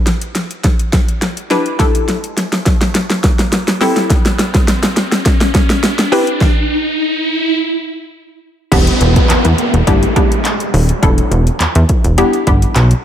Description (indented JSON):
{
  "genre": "dance-pop",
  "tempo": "104 BPM",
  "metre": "4/4",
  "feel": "straight",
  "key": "E minor",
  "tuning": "A4 = 439 Hz",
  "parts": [
    { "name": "hollow square pluck", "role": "accompaniment", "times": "0.0-12.9 s", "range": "G3 to B4", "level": "-16 LUFS", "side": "left 1 dB", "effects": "chorus, sidechain pumping" },
    { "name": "riser and downlifter", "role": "sound effects", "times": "2.1-13.0 s", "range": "none", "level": "-19 LUFS", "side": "equal", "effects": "none" },
    { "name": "deep house drum kit", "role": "drums", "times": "0.1-13.0 s", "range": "crash cymbal, handclaps, hi-hat, kick drum, snare drum", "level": "-13 LUFS", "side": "equal", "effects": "overdrive" },
    { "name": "plucky analog bass", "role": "bass", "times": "8.7-12.9 s", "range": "D#1 to E2", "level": "-12 LUFS", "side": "equal", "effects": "sidechain pumping" }
  ],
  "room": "light reverb",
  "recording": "none",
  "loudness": "-11 LUFS",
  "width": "side -10 dB against mid",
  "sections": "0.0-8.7 A section; 8.7-13.0 B section",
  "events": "build-up 0.0-8.7; drum fill 0.0-6.4; riser 2.1-8.7; stop 6.4-8.7; drop 8.7-13.0",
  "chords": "0.0 Em7; 3.8 Am7; 6.4 N.C.; 8.7 Em7"
}